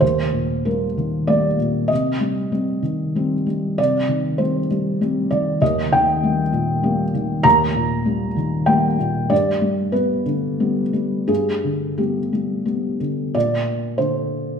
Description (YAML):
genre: neoclassical minimalist piano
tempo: 96 BPM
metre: 3/4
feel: rubato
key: C minor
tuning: A4 = 440 Hz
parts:
  - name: felt-muted upright piano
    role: solo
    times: 0.0-14.6 s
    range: Eb2 to Bb5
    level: -18 LUFS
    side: equal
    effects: none
room: wet recital hall reverb, RT60 1.4 s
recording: minimal, uncompressed stereo recording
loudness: -18 LUFS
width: side -6 dB against mid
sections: 0.0-13.3 A section; 13.3-14.6 B section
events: none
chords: 0.0 Eb; 1.9 Cm; 5.6 Eb; 9.3 G; 13.3 Bbadd9